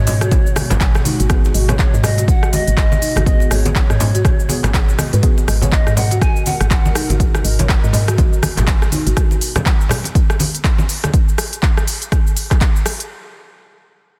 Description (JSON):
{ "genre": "afro house", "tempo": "122 BPM", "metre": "4/4", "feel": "swing 59% on 16ths", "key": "G# minor", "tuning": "A4 = 440 Hz", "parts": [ { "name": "reedy pan flute", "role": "melody", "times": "0.0-7.2 s", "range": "C#5 to G#5", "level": "-29 LUFS", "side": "equal", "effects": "dub echo" }, { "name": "ethereal airy pad", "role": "sustained chords", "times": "0.0-9.2 s", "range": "B2 to A#4", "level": "-31 LUFS", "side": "equal", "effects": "none" }, { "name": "folk marimba with medium mallets", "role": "arpeggios", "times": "0.0-9.2 s", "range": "D#4 to G#5", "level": "-29 LUFS", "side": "equal", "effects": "sidechain pumping, dub echo" }, { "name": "woody FM bass", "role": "bass", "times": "0.0-9.1 s", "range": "G#1 to G#2", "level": "-20 LUFS", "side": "equal", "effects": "sidechain pumping" }, { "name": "afro-pop drum kit", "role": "drums", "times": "0.1-13.1 s", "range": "cabasa, handclaps, hi-hat, rim click", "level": "-24 LUFS", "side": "equal", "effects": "none" }, { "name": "congas", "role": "percussion", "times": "0.1-11.1 s", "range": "none", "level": "-25 LUFS", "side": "equal", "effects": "none" }, { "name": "electronic kick drum", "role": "drums", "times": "0.3-12.7 s", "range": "none", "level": "-17 LUFS", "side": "equal", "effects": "none" }, { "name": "deep mellow chord stab", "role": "stabs", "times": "1.3-5.8 s", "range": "B3 to G#4", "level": "-30 LUFS", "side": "equal", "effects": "chorus, sidechain pumping, dub echo" } ], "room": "digital ambience", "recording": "dense, heavily limited modern master", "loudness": "-15 LUFS", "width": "mono", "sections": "0.0-13.1 A section", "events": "drop 0.0-13.1", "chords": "0.0 G#m7", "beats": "0.32 0.81 | 1.30 1.79 2.28 2.77 | 3.27 3.76 4.25 4.74 | 5.23 5.72 6.22 6.71 | 7.20 7.69 8.18 8.68 | 9.17 9.66 10.15 10.64 | 11.13 11.63 12.12 12.61" }